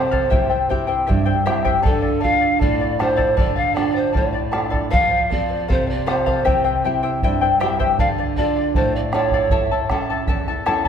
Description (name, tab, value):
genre	andean folk, Andean ensemble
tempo	78 BPM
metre	2/4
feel	straight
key	D minor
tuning	A4 = 441 Hz
part	breathy mellow pan flute	melody	0.0-9.9 s	A4 to F5	-21 LUFS	equal	none
part	charango	accompaniment	0.0-10.9 s	E4 to A5	-22 LUFS	left 5 dB	none
part	nylon-string guitar	accompaniment	0.0-10.9 s	E2 to A4	-24 LUFS	right 4 dB	none
part	bombo	percussion	0.1-10.9 s	none	-22 LUFS	right 1 dB	none
room	wet concert hall reverb, RT60 2.1 s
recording	none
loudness	-16 LUFS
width	side -8 dB against mid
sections	0.0-4.9 A section; 4.9-10.9 A section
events	none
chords	0.3 C; 1.9 Dm; 4.9 F; 6.5 C; 8.0 Dm; 9.5 A